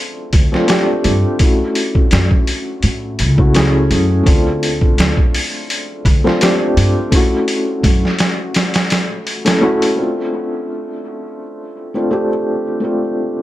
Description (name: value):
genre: trip hop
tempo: 84 BPM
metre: 4/4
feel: swing 54% on 16ths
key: unclear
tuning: A4 = 436 Hz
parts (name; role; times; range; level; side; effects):
- felt-muted upright piano; accompaniment; 0.0-13.4 s; A3 to A4; -17 LUFS; equal; tremolo, vintage 12-bit sampler grit, low-pass filter, tape echo
- upright bass; bass; 0.3-8.0 s; C#2 to A2; -15 LUFS; equal; none
- trip hop sampler-style drum kit; drums; 0.3-10.0 s; hi-hat, kick drum, snare drum; -15 LUFS; equal; none
room: light reverb, small room ambience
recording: none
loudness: -13 LUFS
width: side -15 dB against mid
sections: 0.0-10.0 A section; 10.0-13.4 B section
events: filter sweep on felt piano 0.0-10.0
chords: 0.0 Dm7; 1.4 F#m7; 4.3 Dm7; 7.1 F#m7; 10.0 Dm7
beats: 0.69 | 1.41 2.12 2.83 3.55 | 4.26 4.98 5.69 6.41 | 7.12 7.83 8.55 9.26 | 9.98 10.69 11.40 12.12 | 12.83